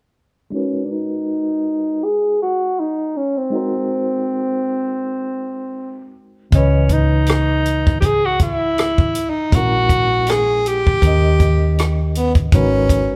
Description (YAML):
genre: R&B, neo-soul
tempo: 80 BPM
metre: 4/4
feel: swing 53% on 16ths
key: G# minor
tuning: A4 = 440 Hz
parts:
  - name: breathy tenor saxophone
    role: melody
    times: 0.5-13.2 s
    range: B3 to G#4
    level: -21 LUFS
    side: equal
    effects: low-pass filter
  - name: reed electric piano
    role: accompaniment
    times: 0.5-13.2 s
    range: A#2 to D#5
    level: -28 LUFS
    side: equal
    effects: fast tremolo, low-pass filter
  - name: hollow-body short-scale fingered electric bass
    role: bass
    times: 6.5-13.1 s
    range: G#1 to D#2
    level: -21 LUFS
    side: equal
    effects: none
  - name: compact cocktail drum kit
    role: drums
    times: 6.5-13.1 s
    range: hi-hat, kick drum, rim click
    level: -20 LUFS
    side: equal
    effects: none
room: moderate large studio reverb, RT60 1.4 s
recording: band playing live in one room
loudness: -17 LUFS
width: mono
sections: 0.5-12.5 A section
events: filter sweep 0.5-12.5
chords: 0.5 G#m9; 3.5 G#7; 6.5 C#m9; 9.5 A#m7b5; 11.0 D#7; 12.5 G#m9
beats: | 0.53 1.28 2.03 2.78 | 3.53 4.28 5.03 5.78 | 6.53 7.28 8.03 8.78 | 9.53 10.28 11.03 11.78 | 12.53